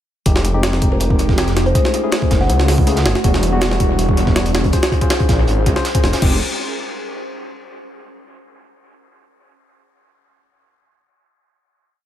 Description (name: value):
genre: drum and bass, jungle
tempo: 161 BPM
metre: 4/4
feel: straight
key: unclear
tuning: A4 = 440 Hz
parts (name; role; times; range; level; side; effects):
- bright tine electric piano; stabs; 0.3-6.4 s; G3 to C5; -23 LUFS; left 4 dB; dub echo
- detuned saw bass; bass; 0.3-6.4 s; E1 to Db2; -17 LUFS; equal; none
- crunchy breakbeat drum kit; drums; 0.3-6.2 s; hi-hat, snare drum; -30 LUFS; right 4 dB; high-pass filter on hats, high-pass filter on snare, high-pass filter on room
- jungle sampler-style drum kit; drums; 0.3-6.3 s; crash cymbal, hi-hat, kick drum, snare drum; -17 LUFS; equal; dub echo
- buzzing kalimba; melody; 0.9-2.6 s; Bb4 to Gb5; -25 LUFS; left 2 dB; dub echo
room: light reverb, studio ambience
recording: echo-heavy mix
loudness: -13 LUFS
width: side -11 dB against mid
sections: 0.3-6.2 drop; 6.2-7.7 final chord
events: drop 0.3-6.2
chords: 0.3 Fm9; 1.8 Gbm9; 3.2 Em9; 4.7 Bbm9; 6.2 Fm9